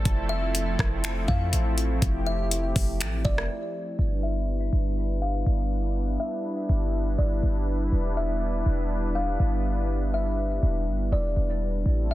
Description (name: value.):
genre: hip hop, atmospheric cloud-rap.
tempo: 122 BPM.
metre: 4/4.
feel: half-time.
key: G mixolydian.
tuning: A4 = 440 Hz.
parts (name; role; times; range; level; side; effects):
warm analog pad; sustained chords; 0.0-12.1 s; F3 to B4; -31 LUFS; equal; wide subtle chorus, sidechain pumping, low-pass filter.
clean 808-style bass; bass; 0.0-12.1 s; E1 to F2; -26 LUFS; equal; none.
smooth R&B drum kit; drums; 0.1-3.5 s; finger snaps, hi-hat, kick drum, rim click; -26 LUFS; equal; soft clipping on snare.
kalimba; melody; 0.3-12.1 s; D5 to F5; -33 LUFS; left 2 dB; low-pass filter, tape echo.
room: digital ambience.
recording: dense, heavily limited modern master.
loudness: -24 LUFS.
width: side -16 dB against mid.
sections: 0.0-4.0 A section; 4.0-12.1 B section.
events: break 3.5-4.0; filter sweep 4.0-12.1.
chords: 0.1 Fmaj7; 4.0 G6; 7.9 Em7.